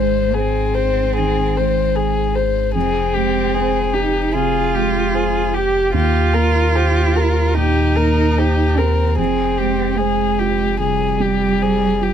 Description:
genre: neoclassical piano and strings.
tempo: 75 BPM.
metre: 4/4.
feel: rubato.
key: F minor.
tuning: A4 = 439 Hz.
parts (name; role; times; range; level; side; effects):
dark violin; melody; 0.0-12.1 s; G4 to C5; -19 LUFS; left 5 dB; none.
dark cello; second line; 0.0-12.1 s; G3 to G4; -21 LUFS; right 5 dB; none.
felt-muted upright piano; accompaniment; 0.0-12.1 s; Eb2 to C5; -22 LUFS; right 4 dB; none.
pure sine sub bass; bass; 0.0-12.1 s; F1 to Eb2; -21 LUFS; equal; none.
room: little or no reverb.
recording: close, detailed microphones.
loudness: -15 LUFS.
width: side -9 dB against mid.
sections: 0.0-12.1 A section.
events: none.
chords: 0.0 Ab; 2.8 Fmadd9; 5.9 Eb6; 9.2 Fmadd9.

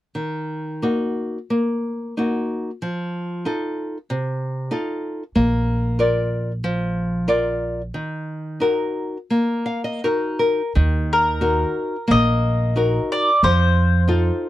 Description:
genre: fado-style ballad.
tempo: 80-96 BPM.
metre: 4/4.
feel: rubato.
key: Eb harmonic minor.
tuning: A4 = 440 Hz.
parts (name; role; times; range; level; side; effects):
nylon-string guitar; accompaniment; 0.1-14.5 s; C3 to F5; -21 LUFS; left 1 dB; none.
upright bass; bass; 5.4-14.3 s; Bb1 to F2; -20 LUFS; right 1 dB; none.
mandolin; melody; 11.1-14.5 s; Bb4 to Eb5; -20 LUFS; left 1 dB; none.
room: little or no reverb.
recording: dry, close 1970s-style studio recording.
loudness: -19 LUFS.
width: side -14 dB against mid.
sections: 0.2-10.7 A section; 10.7-14.5 B section.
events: nylon-string guitar fill 9.3-10.7.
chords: 0.2 Ebm; 2.8 F7; 5.4 Bb; 7.9 Ebm; 13.4 F7.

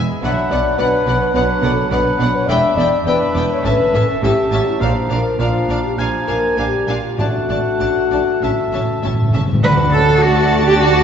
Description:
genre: quick classical-period movement for symphony orchestra.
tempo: 96-107 BPM.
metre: 4/4.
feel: rubato.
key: D major.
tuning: A4 = 440 Hz.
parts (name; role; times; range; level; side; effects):
warm studio violin section; melody; 0.0-11.0 s; F5 to A5; -28 LUFS; left 5 dB; none.
clear oboe; second line; 0.0-11.0 s; E5 to A5; -25 LUFS; right 2 dB; none.
dark clarinet; second line; 0.0-11.0 s; C#4 to B4; -27 LUFS; left 1 dB; none.
rich studio violin section; second line; 0.0-11.0 s; D5 to F5; -31 LUFS; left 2 dB; none.
rich studio viola section; accompaniment; 0.0-11.0 s; B3 to F#4; -28 LUFS; right 1 dB; none.
warm bassoon; accompaniment; 0.0-11.0 s; F3 to D4; -26 LUFS; right 2 dB; none.
warm studio double bass section; bass; 0.0-11.0 s; E1 to D2; -22 LUFS; right 2 dB; none.
mellow hollow concert flute; second line; 0.2-11.0 s; F#5 to B5; -25 LUFS; left 1 dB; none.
warm French horn section; sustained chords; 0.2-11.0 s; A3 to E5; -19 LUFS; left 3 dB; none.
warm studio cello section; bass; 0.2-11.0 s; E2 to B4; -20 LUFS; right 3 dB; none.
timpani; percussion; 3.7-10.5 s; A2 to D3; -20 LUFS; equal; none.
room: wet scoring stage reverb, RT60 1.6 s.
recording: recorded in a church or concert hall, nothing above 7.8 kHz.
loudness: -14 LUFS.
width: side -8 dB against mid.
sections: 0.0-9.6 A section; 9.6-11.0 B section.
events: timpani fill 8.4-9.6.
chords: 0.2 Bm; 2.5 Em7; 3.6 A; 4.8 Bb; 6.0 Bb7; 7.2 D/A; 8.4 A; 9.6 D.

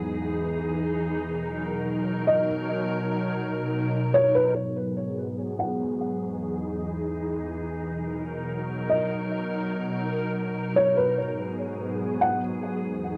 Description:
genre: hip hop.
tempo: 145 BPM.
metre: 4/4.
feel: half-time.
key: G# minor.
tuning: A4 = 440 Hz.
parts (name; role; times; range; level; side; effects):
glassy FM pad; sustained chords; 0.0-13.2 s; E2 to A#4; -30 LUFS; equal; ensemble chorus, built-in reverb, low-pass filter, cassette tape.
felt-muted upright piano; melody; 2.3-5.8, 8.9-12.4 s; B4 to F#5; -26 LUFS; equal; low-pass filter, analog delay.
room: moderate studio reverb, RT60 0.5 s.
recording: home recording on cassette.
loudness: -27 LUFS.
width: mono.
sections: 0.0-4.6 A section; 4.6-11.2 B section; 11.2-13.2 C section.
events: filter sweep 4.6-11.2.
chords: 0.0 Emaj7; 1.2 Bmaj7; 4.6 G#m7; 6.2 Emaj7; 7.9 Bmaj7; 11.2 G#m7.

